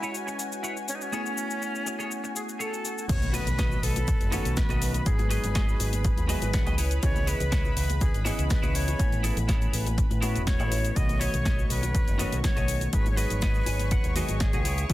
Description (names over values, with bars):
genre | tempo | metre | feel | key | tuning
nu-disco, nu disco | 122 BPM | 4/4 | straight | unclear | A4 = 440 Hz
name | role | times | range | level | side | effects
breathy bright silver concert flute | melody | 0.0-14.9 s | C#4 to D#5 | -34 LUFS | left 1 dB | tape echo
bell-like tine electric piano | accompaniment | 0.0-14.9 s | D#3 to G#5 | -34 LUFS | equal | wide subtle chorus, sidechain pumping
lush unison pad | sustained chords | 0.0-14.9 s | F#4 to C#6 | -39 LUFS | left 1 dB | chorus, sidechain pumping
clean electric guitar | riff | 0.0-14.9 s | E4 to G#5 | -37 LUFS | right 2 dB | analog chorus
house drum kit | drums | 0.0-14.9 s | crash cymbal, hi-hat, shaker, snare drum | -35 LUFS | left 2 dB | none
fingered electric bass with an envelope filter | bass | 3.1-14.9 s | E1 to A2 | -29 LUFS | equal | tube saturation
electronic kick drum | drums | 3.1-14.9 s | none | -27 LUFS | equal | none
bongos, cabasa and congas | percussion | 3.1-14.9 s | none | -41 LUFS | left 4 dB | none
impact | sound effects | 3.1-5.1 s | none | -37 LUFS | equal | none
room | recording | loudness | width
light reverb | dense, heavily limited modern master | -24 LUFS | side -16 dB against mid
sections
0.0-3.1 A section; 3.1-14.9 B section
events
drop 3.1-14.9; impact 3.1-5.1; clean electric guitar fill 6.0-7.0, 13.4-14.9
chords
0.0 C#m7; 1.1 Amaj7; 3.1 B7; 5.1 G#m7; 6.8 C#m7; 9.0 Amaj7; 11.0 B7; 12.9 G#m7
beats
0.14 0.64 | 1.13 1.62 2.11 2.60 | 3.10 3.59 4.08 4.57 | 5.06 5.55 6.04 6.54 | 7.03 7.52 8.01 8.50 | 9.00 9.49 9.98 10.47 | 10.96 11.46 11.95 12.44 | 12.93 13.42 13.91 14.41 | 14.90